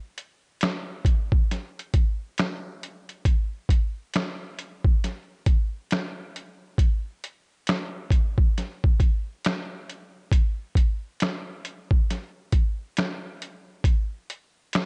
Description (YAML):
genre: hip hop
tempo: 68 BPM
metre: 4/4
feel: swing 66% on 16ths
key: none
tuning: none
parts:
  - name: lo-fi sampler-style drum kit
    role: drums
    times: 0.2-14.9 s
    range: finger snaps, hi-hat, kick drum, snare drum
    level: -25 LUFS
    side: equal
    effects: overdrive
room: little or no reverb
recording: dark, warm production, nothing above 10.4 kHz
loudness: -26 LUFS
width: mono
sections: 0.0-14.9 A section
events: none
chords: none